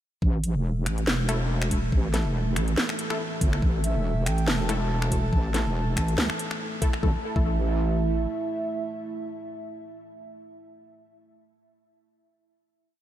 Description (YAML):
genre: deep dubstep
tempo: 141 BPM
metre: 4/4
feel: swing 54% on 16ths, half-time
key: unclear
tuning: A4 = 440 Hz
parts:
  - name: dark analog pad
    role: sustained chords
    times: 0.2-11.0 s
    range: E3 to E5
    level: -33 LUFS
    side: right 3 dB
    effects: lush chorus
  - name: wobble bass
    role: bass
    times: 0.2-8.3 s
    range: E1 to D2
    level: -25 LUFS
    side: equal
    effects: chorus
  - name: electronic kick drum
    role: drums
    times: 0.2-7.5 s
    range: none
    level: -24 LUFS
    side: equal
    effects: studio reverb
  - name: garage drum kit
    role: drums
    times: 0.4-7.0 s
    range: finger snaps, hi-hat, snare drum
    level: -30 LUFS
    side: equal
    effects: studio reverb
  - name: filtered dub chord stab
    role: stabs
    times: 1.3-11.3 s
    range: A3 to A4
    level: -35 LUFS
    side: left 2 dB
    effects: chorus, dub echo
  - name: breathy flute-like synth lead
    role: melody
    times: 3.8-6.6 s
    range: E5 to A5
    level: -36 LUFS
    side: right 1 dB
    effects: chorus, dub echo
room: light reverb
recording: none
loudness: -23 LUFS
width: side -12 dB against mid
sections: 0.2-7.0 drop; 7.0-10.4 final chord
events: drop 0.2-7.0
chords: 0.2 A5